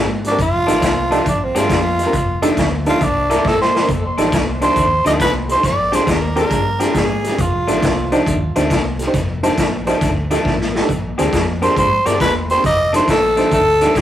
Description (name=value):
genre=electric blues shuffle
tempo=137 BPM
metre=4/4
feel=swing 67% on 8ths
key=F mixolydian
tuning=A4 = 438 Hz
part: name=electric guitar through a small old amp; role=riff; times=0.0-14.0 s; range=F2 to A4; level=-21 LUFS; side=left 1 dB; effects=none
part: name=vintage muted fingered electric bass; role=bass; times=0.0-14.0 s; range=E1 to Bb2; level=-24 LUFS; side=left 1 dB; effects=none
part: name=barky reed electric piano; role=accompaniment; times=0.2-13.9 s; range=C4 to C5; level=-21 LUFS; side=right 1 dB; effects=overdrive, fast tremolo
part: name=raw garage drum kit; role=drums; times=0.2-14.0 s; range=hi-hat, kick drum, snare drum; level=-19 LUFS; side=equal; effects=none
part: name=growling tenor saxophone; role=melody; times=0.3-8.3, 11.6-14.0 s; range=C4 to Eb5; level=-17 LUFS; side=right 1 dB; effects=digital delay
room=moderate studio reverb, RT60 0.5 s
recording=rough rehearsal-room recording, warm saturation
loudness=-14 LUFS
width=side -11 dB against mid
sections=0.0-3.9 A section; 3.9-14.0 B section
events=tenor saxophone solo 0.0-3.9; drum fill 3.4-3.9, 10.4-10.9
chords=0.4 F13; 1.3 Bb13; 2.1 F13; 3.0 C13; 3.9 F13; 5.6 Bb13; 7.4 F13; 10.9 Bb13; 12.6 F13